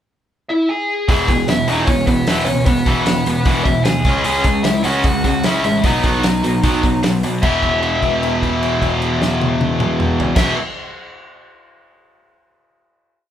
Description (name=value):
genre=punk rock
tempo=151 BPM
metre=4/4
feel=straight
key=E major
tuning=A4 = 435 Hz
part: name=dark smooth lead guitar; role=melody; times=0.5-10.5 s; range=B3 to G#5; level=-20 LUFS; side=left 1 dB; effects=overdrive
part: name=tight distorted guitar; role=riff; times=1.1-10.6 s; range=E2 to C#4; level=-17 LUFS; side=equal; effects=distortion
part: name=fuzz picked electric bass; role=bass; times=1.1-10.5 s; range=E1 to B2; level=-24 LUFS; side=left 1 dB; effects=overdrive
part: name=loose indie drum kit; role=drums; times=1.1-10.5 s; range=crash cymbal, hi-hat, kick drum, snare drum, toms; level=-20 LUFS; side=equal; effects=none
room=light reverb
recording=band playing live in one room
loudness=-14 LUFS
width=side -10 dB against mid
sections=0.0-1.1 pickup bar; 1.1-7.4 verse; 7.4-10.6 final chord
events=held note 7.4-10.4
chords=0.0 E; 4.1 C#m; 5.8 B; 7.4 E5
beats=0.29 0.69 | 1.08 1.48 1.88 2.27 | 2.67 3.06 3.46 3.86 | 4.25 4.65 5.05 5.44 | 5.84 6.24 6.63 7.03 | 7.43 7.83 8.22 8.62 | 9.02 9.41 9.81 10.21